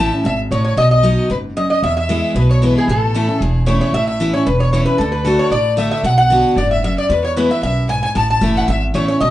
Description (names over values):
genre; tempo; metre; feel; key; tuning
bluegrass; 227 BPM; 4/4; straight; A major; A4 = 442 Hz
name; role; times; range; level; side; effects
lap resonator guitar; melody; 0.0-9.3 s; G#4 to A5; -18 LUFS; equal; none
rich fiddle; second line; 0.0-9.3 s; G#4 to A5; -25 LUFS; left 3 dB; none
picked steel-string acoustic guitar; accompaniment; 0.0-9.3 s; E2 to F#4; -18 LUFS; equal; none
upright bass; bass; 0.0-9.3 s; E1 to E2; -18 LUFS; right 1 dB; none
room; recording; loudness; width
wet studio ambience, RT60 0.5 s; heard from further back in the room, nothing above 10.4 kHz; -13 LUFS; side -14 dB against mid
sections
0.0-3.9 A section; 3.9-9.3 A section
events
none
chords
0.0 A; 0.8 B; 1.8 E; 2.9 A; 3.9 Aadd9; 5.0 D; 6.0 Bm; 7.1 E; 8.2 A